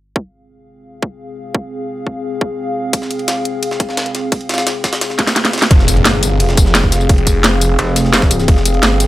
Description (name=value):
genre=dark technical drum and bass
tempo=173 BPM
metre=4/4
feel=straight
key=F minor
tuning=A4 = 440 Hz
part: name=dark analog pad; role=sustained chords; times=1.2-9.1 s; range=C4 to F5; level=-20 LUFS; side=left 1 dB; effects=chorus, sidechain pumping
part: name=electronic kick drum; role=drums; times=0.2-8.6 s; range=none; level=-13 LUFS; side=equal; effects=overdrive, high-pass filter on kick
part: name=drum and bass drum kit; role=drums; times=2.9-9.1 s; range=hi-hat, snare drum, tambourine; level=-14 LUFS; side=equal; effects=overdrive
part: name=jungle sampler-style drum kit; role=drums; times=2.9-9.1 s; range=hi-hat, ride cymbal, snare drum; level=-22 LUFS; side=equal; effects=high-pass filter on cymbals, high-pass filter on snare, high-pass filter on hats
part: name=snarling distorted saw bass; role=bass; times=5.7-9.1 s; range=F1 to G1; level=-15 LUFS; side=equal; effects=distortion, overdrive
part: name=impact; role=sound effects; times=5.7-7.1 s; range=none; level=-19 LUFS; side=equal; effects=none
part: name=metallic wobble bass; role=bass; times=7.8-8.5 s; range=F1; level=-15 LUFS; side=equal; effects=chorus
room=digital ambience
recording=faint mains hum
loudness=-12 LUFS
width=side -16 dB against mid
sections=0.2-5.7 A section; 5.7-9.1 B section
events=drum fill 5.2-5.7; drop 5.7-9.1; impact 5.7-7.1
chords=0.2 Fm